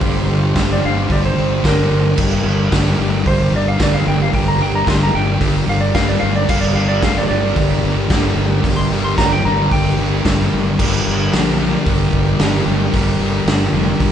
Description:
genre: garage rock duo or trio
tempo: 112 BPM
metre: 4/4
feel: straight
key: G minor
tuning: A4 = 440 Hz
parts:
  - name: clean lap steel guitar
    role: melody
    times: 0.0-10.8 s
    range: Bb4 to C6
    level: -21 LUFS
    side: right 1 dB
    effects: none
  - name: combo organ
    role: sustained chords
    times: 0.0-14.1 s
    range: D4 to C5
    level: -28 LUFS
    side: equal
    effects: none
  - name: fuzz guitar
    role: riff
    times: 0.0-14.1 s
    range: G2 to G3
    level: -18 LUFS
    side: equal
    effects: distortion
  - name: fuzz fingered electric bass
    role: bass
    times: 0.0-14.1 s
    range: F1 to Bb1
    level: -19 LUFS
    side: equal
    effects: overdrive
  - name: raw garage drum kit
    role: drums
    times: 0.0-14.1 s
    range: crash cymbal, hi-hat, kick drum, snare drum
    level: -19 LUFS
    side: equal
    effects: none
room: light reverb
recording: band playing live in one room, nothing above 10.3 kHz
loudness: -13 LUFS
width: side -9 dB against mid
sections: 0.0-10.8 A section; 10.8-14.1 B section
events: electric slide guitar solo 0.0-10.8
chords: 0.0 Gm

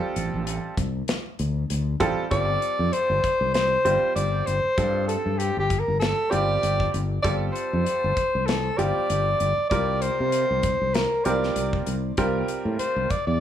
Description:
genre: electric jazz fusion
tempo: 97 BPM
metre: 4/4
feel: swing 55% on 16ths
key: G minor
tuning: A4 = 439 Hz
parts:
  - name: bright concert grand piano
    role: accompaniment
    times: 0.0-13.1 s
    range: G3 to C5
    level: -28 LUFS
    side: right 3 dB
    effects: none
  - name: fretless electric bass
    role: bass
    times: 0.0-13.4 s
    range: G1 to C3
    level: -26 LUFS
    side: left 1 dB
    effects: none
  - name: modern studio drum kit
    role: drums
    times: 0.2-13.3 s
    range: hi-hat, kick drum, snare drum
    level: -30 LUFS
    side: left 1 dB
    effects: none
  - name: breathy soprano saxophone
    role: melody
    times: 2.3-13.4 s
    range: G4 to D5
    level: -24 LUFS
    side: left 1 dB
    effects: tape echo
room: light reverb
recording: small room ambience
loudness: -21 LUFS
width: side -10 dB against mid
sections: 0.0-2.3 A section; 2.3-13.4 B section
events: none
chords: 0.0 Dm7; 2.3 G9sus4; 9.7 C9sus4

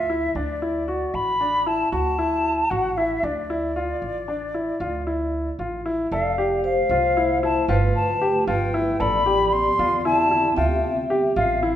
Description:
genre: contemporary instrumental, chamber music in an uneven meter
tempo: 229 BPM (eighths)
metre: 11/8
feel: straight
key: D dorian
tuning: A4 = 441 Hz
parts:
  - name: mellow concert flute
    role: melody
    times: 0.0-11.7 s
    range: D5 to C6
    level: -23 LUFS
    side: left 1 dB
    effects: none
  - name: clear grand piano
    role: arpeggios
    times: 0.0-11.8 s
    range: D4 to A4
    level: -24 LUFS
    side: equal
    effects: none
  - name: upright bass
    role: bass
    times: 0.0-11.8 s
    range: F1 to E2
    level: -29 LUFS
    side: right 2 dB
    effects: none
  - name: vibraphone with medium mallets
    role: second line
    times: 6.1-11.8 s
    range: B4 to E5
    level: -26 LUFS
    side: left 4 dB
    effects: none
  - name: granular cloud pad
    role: sustained chords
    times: 6.7-11.8 s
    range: D3 to G4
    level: -32 LUFS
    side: right 2 dB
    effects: built-in reverb
room: moderate recital hall reverb, RT60 1.5 s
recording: minimal, uncompressed stereo recording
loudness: -20 LUFS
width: side -11 dB against mid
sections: 0.0-6.1 A section; 6.1-11.8 B section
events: none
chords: 0.4 D; 3.2 Dmadd9; 6.1 F6; 7.7 G7; 9.0 Am11; 10.6 Dm9

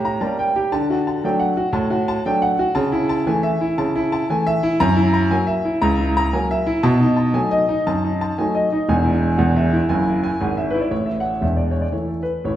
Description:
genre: jazz, stride piano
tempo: 118 BPM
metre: 4/4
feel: swing 59% on 8ths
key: A major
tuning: A4 = 440 Hz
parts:
  - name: warm grand piano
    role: solo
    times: 0.0-12.6 s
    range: E1 to Bb5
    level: -17 LUFS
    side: equal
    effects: none
room: wet large studio reverb, RT60 1.4 s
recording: band playing live in one room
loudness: -17 LUFS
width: side -12 dB against mid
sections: 0.0-10.9 A section; 10.9-12.6 B section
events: grand piano fill 9.4-10.9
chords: 0.0 A7b9; 0.7 D; 2.8 A/C#; 4.8 F#7; 6.8 B7; 8.9 E; 10.9 A5

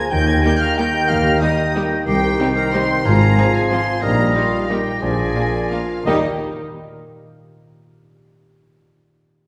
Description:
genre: classical, orchestral ballroom waltz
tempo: 164-199 BPM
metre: 3/4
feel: rubato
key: Eb major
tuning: A4 = 440 Hz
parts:
  - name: rich studio violin section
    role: melody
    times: 0.0-6.2 s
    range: Eb5 to Ab6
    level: -30 LUFS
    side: equal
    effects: none
  - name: clear oboe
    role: second line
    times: 0.0-6.2 s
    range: D5 to Ab5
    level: -30 LUFS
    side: equal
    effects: none
  - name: mellow hollow silver concert flute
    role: second line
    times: 0.0-6.2 s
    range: Eb6 to C7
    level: -27 LUFS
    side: equal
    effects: none
  - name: warm clarinet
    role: second line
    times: 0.0-6.2 s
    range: F4 to Ab5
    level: -28 LUFS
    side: equal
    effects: none
  - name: warm bassoon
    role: accompaniment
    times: 0.0-6.2 s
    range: Eb3 to G3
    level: -27 LUFS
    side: equal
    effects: none
  - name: dark French horn section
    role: sustained chords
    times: 0.0-6.2 s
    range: F3 to G4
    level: -28 LUFS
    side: equal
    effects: none
  - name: concert harp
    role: arpeggios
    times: 0.0-7.1 s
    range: Ab2 to G5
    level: -29 LUFS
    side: equal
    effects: none
  - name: rich studio double bass section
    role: bass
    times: 0.1-6.2 s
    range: Ab1 to Eb2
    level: -26 LUFS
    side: equal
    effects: none
  - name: warm studio cello section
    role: bass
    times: 0.1-6.3 s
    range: C2 to Eb3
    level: -28 LUFS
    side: equal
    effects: none
  - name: warm tuba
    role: bass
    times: 0.1-6.2 s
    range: Ab1 to Eb2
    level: -30 LUFS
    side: equal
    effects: none
  - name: rich studio violin section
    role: second line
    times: 0.4-6.3 s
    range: D4 to Ab4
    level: -32 LUFS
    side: equal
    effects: none
  - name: clear studio viola section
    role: accompaniment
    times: 0.4-6.2 s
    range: F3 to C4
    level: -30 LUFS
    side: equal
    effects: none
room: wet scoring stage reverb, RT60 1.9 s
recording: heard from further back in the room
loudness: -18 LUFS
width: mono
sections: 0.0-6.1 A section; 6.1-7.1 B section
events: slowing down 3.5-6.1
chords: 0.1 Eb; 2.1 Cm; 3.0 Fm/Ab; 4.0 Eb/Bb; 5.0 Bb7; 6.1 Eb

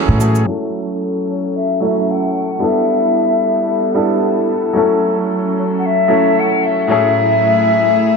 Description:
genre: chillout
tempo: 112 BPM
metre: 4/4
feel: swing 55% on 16ths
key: A mixolydian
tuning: A4 = 444 Hz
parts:
  - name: breathy mellow jazz flute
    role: melody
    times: 0.0-8.2 s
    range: C#5 to F#5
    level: -16 LUFS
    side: left 4 dB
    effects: analog delay, shimmer reverb
  - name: bright baby grand piano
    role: accompaniment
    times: 0.0-8.2 s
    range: A2 to B4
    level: -18 LUFS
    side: moving between left 1 dB and right 5 dB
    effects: auto-pan, dub echo, shimmer reverb
  - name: rich chamber string section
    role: sustained chords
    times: 0.0-8.2 s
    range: A2 to G#4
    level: -18 LUFS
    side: equal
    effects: shimmer reverb
room: wet plate reverb, RT60 1.6 s, small room ambience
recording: echo-heavy mix, low-pass filter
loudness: -13 LUFS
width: side -4 dB against mid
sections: 0.5-8.2 A section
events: filter sweep 0.5-8.2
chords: 0.5 A6; 2.6 G69; 4.8 A6; 6.9 F#m9/A

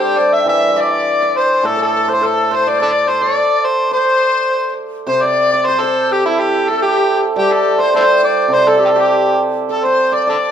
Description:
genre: chinese traditional, Chinese chamber ensemble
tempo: 104 BPM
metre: 2/4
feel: rubato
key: C gong mode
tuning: A4 = 440 Hz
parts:
  - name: overdriven harmonica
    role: melody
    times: 0.0-10.5 s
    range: E4 to E5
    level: -15 LUFS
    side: equal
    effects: none
  - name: bright large dizi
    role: second line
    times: 0.0-10.5 s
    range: E4 to E5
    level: -19 LUFS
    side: left 5 dB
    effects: none
  - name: hammered dulcimer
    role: second line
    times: 0.0-10.5 s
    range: E4 to G5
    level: -20 LUFS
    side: right 5 dB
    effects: none
  - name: hammered dulcimer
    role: accompaniment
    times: 0.0-10.3 s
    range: A2 to D4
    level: -19 LUFS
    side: right 1 dB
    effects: none
room: moderate recital hall reverb, RT60 1.6 s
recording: minimal, uncompressed stereo recording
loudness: -12 LUFS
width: side -8 dB against mid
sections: 0.0-5.1 A section; 5.1-10.5 B section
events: none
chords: none

